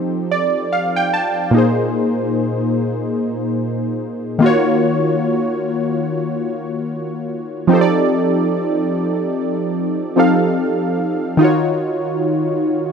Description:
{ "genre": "R&B", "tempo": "73 BPM", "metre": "4/4", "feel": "swing 58% on 16ths", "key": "unclear", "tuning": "A4 = 441 Hz", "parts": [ { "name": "warm analog keys", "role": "solo", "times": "0.0-12.9 s", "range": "Bb2 to A5", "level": "-16 LUFS", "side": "equal", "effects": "chorus" } ], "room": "light reverb", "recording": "dark, warm production", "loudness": "-16 LUFS", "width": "side -6 dB against mid", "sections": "0.0-12.9 A section", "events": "synth keys fill 0.0-1.5", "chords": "0.0 F13; 1.5 Bb9sus4; 4.4 Ebm9; 7.7 F13; 11.4 Ebm9" }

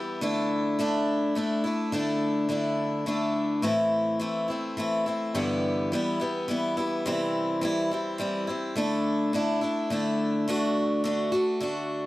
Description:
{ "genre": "rock", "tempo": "105 BPM", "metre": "3/4", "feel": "straight", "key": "unclear", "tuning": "A4 = 441 Hz", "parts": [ { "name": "picked swing-style acoustic guitar", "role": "solo", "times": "0.0-12.1 s", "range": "G2 to F#4", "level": "-25 LUFS", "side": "equal", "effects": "slapback echo" } ], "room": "light reverb", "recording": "dry, close 1970s-style studio recording", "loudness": "-25 LUFS", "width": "side -17 dB against mid", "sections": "0.0-10.5 A section; 10.5-12.1 B section", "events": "none", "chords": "0.2 Dsus2; 3.6 Am; 5.3 G6; 7.1 C; 8.8 Dsus2; 10.5 D" }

